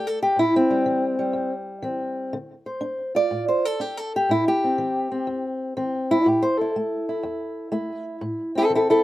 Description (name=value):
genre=acoustic country blues, solo or duo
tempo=122 BPM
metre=4/4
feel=swing 68% on 8ths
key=A minor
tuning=A4 = 440 Hz
part: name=fingerpicked old ladder-braced acoustic guitar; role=solo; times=0.0-9.0 s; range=E2 to D5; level=-21 LUFS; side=equal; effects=slapback echo
room=little or no reverb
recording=recorded outdoors, with no room sound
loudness=-21 LUFS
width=side -16 dB against mid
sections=0.0-9.0 A section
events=steel-string acoustic guitar solo 0.0-9.0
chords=0.0 Am7; 2.3 Dm7; 4.3 Am7